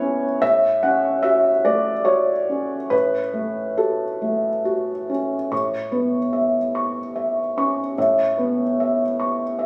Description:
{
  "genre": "neoclassical minimalist piano",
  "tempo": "72 BPM",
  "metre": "3/4",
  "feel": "uneven beats, rubato",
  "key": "unclear",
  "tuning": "A4 = 440 Hz",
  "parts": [
    { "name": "felt-muted upright piano", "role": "solo", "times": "0.0-9.7 s", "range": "A2 to C#6", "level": "-21 LUFS", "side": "equal", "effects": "none" }
  ],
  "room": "moderate stone room reverb, RT60 1.2 s",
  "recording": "recorded on a phone in the room, studio reverb",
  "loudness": "-21 LUFS",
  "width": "mono",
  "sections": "0.0-5.5 A section; 5.5-9.7 B section",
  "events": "none",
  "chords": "0.4 F#m/A; 5.5 Aadd9",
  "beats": "| 0.41 1.24 2.08 | 2.92 3.80 4.66 | 5.52 6.34 7.16 | 7.97 8.78 9.58"
}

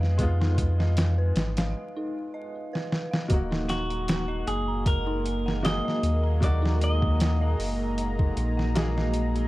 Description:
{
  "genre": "trip hop",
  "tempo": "77 BPM",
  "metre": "4/4",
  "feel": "swing 55% on 16ths",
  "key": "Eb minor",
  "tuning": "A4 = 441 Hz",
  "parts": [
    { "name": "bright upright piano", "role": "accompaniment", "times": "0.0-9.5 s", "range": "Gb3 to Ab4", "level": "-35 LUFS", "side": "equal", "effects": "tremolo, vintage 12-bit sampler grit, tape echo" },
    { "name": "dark detuned synth bell", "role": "arpeggios", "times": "0.0-9.5 s", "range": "Eb4 to Bb5", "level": "-36 LUFS", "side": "equal", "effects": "chorus, phaser, tape echo" },
    { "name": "warm sub bass", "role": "bass", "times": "0.0-9.5 s", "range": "Eb1 to F2", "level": "-26 LUFS", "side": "equal", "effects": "none" },
    { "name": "trip hop sampler-style drum kit", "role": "drums", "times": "0.0-9.5 s", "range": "hi-hat, kick drum, snare drum", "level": "-27 LUFS", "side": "equal", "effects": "none" },
    { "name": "bowed-like drone", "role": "texture", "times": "1.7-9.5 s", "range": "Ab3 to Ab4", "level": "-42 LUFS", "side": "right 1 dB", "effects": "built-in reverb" },
    { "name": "dark analog pad", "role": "sustained chords", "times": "3.3-9.5 s", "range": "Bb3 to Bb5", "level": "-33 LUFS", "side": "equal", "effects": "chorus, vintage 12-bit sampler grit" },
    { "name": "clean electric guitar", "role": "melody", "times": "3.7-9.1 s", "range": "Gb4 to Eb5", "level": "-32 LUFS", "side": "equal", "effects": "tape echo" }
  ],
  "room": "digital ambience",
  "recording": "dark, warm production, vinyl crackle",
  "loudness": "-23 LUFS",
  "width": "side -18 dB against mid",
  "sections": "0.0-3.3 A section; 3.3-9.5 B section",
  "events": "filter sweep on upright piano 0.0-3.3; break 1.7-3.3; drum fill 2.7-3.3",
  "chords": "0.0 Fm7b5; 3.3 Ebm",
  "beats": "| 0.19 0.96 1.75 2.52 | 3.30 4.08 4.86 5.64 | 6.42 7.20 7.98 8.76"
}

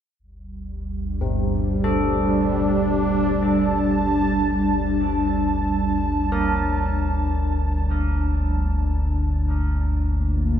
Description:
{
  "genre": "dark ambient drone",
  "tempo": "free time",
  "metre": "none",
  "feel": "none",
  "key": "G minor",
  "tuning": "A4 = 439 Hz",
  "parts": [
    { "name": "sweeping resonant pad", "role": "sustained chords", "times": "0.2-10.6 s", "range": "G3 to A5", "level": "-22 LUFS", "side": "right 1 dB", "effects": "chorus" },
    { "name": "deep rumbling drone", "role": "drone", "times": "0.4-10.6 s", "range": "G1 to D2", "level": "-24 LUFS", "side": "equal", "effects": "built-in reverb, lush chorus" },
    { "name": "carillon bells", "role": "arpeggios", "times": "1.2-10.6 s", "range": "G2 to Bb4", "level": "-28 LUFS", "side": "left 2 dB", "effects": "dub echo" }
  ],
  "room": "wet echo chamber reverb, RT60 2.3 s",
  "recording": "echo-heavy mix",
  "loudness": "-19 LUFS",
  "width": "side -9 dB against mid",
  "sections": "0.2-10.6 A section",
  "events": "none",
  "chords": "0.2 Gmadd9; 8.6 Gm7",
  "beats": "free time"
}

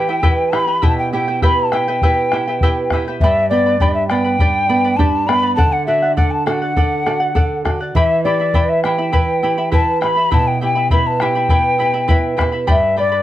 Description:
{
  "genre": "andean folk, Andean ensemble",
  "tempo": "101 BPM",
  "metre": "4/4",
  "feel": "straight",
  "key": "E minor",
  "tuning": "A4 = 440 Hz",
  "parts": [
    { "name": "mellow hollow quena", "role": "melody", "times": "0.0-13.2 s", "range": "D5 to B5", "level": "-17 LUFS", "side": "left 2 dB", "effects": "none" },
    { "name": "charango", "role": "accompaniment", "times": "0.0-13.2 s", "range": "E4 to B5", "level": "-22 LUFS", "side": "right 1 dB", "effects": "none" },
    { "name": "nylon-string guitar", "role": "accompaniment", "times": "0.0-13.2 s", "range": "G2 to E5", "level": "-20 LUFS", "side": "right 4 dB", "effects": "none" },
    { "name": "bombo", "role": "percussion", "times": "0.2-12.8 s", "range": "none", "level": "-16 LUFS", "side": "left 1 dB", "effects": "none" }
  ],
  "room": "moderate studio reverb, RT60 0.6 s",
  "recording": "dark, warm production",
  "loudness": "-13 LUFS",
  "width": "side -13 dB against mid",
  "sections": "0.0-13.2 A section",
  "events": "nylon-string guitar fill 11.8-12.7",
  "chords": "0.0 Em; 3.2 G; 5.6 D; 8.0 Em; 12.7 G",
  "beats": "0.24 | 0.84 1.43 2.02 2.62 | 3.21 3.81 4.40 4.99 | 5.58 6.18 6.77 7.36 | 7.95 8.55 9.14 9.73 | 10.32 10.92 11.51 12.10 | 12.70"
}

